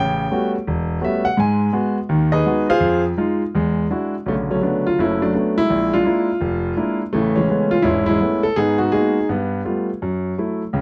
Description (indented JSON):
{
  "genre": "solo jazz",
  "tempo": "167 BPM",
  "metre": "4/4",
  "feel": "swing 63% on 8ths",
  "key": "B dorian from 4.3 s",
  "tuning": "A4 = 439 Hz",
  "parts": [
    { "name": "clear grand piano", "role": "solo", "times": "0.0-10.8 s", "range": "E1 to Ab5", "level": "-19 LUFS", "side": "equal", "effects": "none" }
  ],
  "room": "light reverb",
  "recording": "dark, warm production",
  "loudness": "-19 LUFS",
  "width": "mono",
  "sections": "0.0-4.3 A section; 4.3-10.8 B section",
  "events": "grand piano solo 0.0-4.3",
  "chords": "0.0 A13; 1.4 Abm7; 2.8 Fm7; 3.5 E9; 4.3 Bm9; 5.7 A#7#11; 7.1 Amaj9; 8.6 G#m9; 9.3 G9; 10.0 F#m7"
}